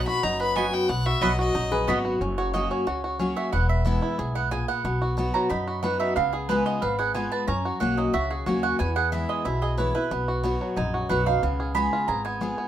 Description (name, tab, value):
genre	bluegrass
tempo	182 BPM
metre	4/4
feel	straight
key	B major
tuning	A4 = 440 Hz
part	clear fiddle	melody	0.0-1.9 s	D#5 to B5	-28 LUFS	left 4 dB	none
part	picked steel-string acoustic guitar	accompaniment	0.0-12.7 s	E2 to G#4	-28 LUFS	left 2 dB	none
part	bluegrass banjo	arpeggios	0.0-12.7 s	F#3 to B4	-29 LUFS	right 1 dB	none
part	upright bass	bass	0.2-12.5 s	E1 to F#2	-29 LUFS	equal	none
part	mandolin	stabs	0.6-12.7 s	B3 to B5	-28 LUFS	right 7 dB	none
part	lap resonator guitar	second line	1.7-2.2 s	F#4 to G#4	-30 LUFS	left 5 dB	none
room	moderate studio reverb, RT60 0.6 s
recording	minimal, uncompressed stereo recording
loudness	-22 LUFS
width	side -11 dB against mid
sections	0.0-2.2 A section; 2.2-12.7 A section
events	fiddle solo 0.0-2.2; mandolin solo 2.2-12.7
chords	0.0 B; 2.2 F#; 3.5 E; 4.8 B; 6.2 C#7; 7.5 F#; 8.8 E; 10.1 B; 11.4 C#7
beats	0.23 0.56 | 0.89 1.22 1.55 1.88 | 2.21 2.54 2.87 3.20 | 3.53 3.86 4.19 4.52 | 4.85 5.18 5.51 5.84 | 6.17 6.49 6.82 7.15 | 7.48 7.81 8.14 8.47 | 8.80 9.13 9.45 9.78 | 10.11 10.44 10.77 11.10 | 11.43 11.76 12.08 12.41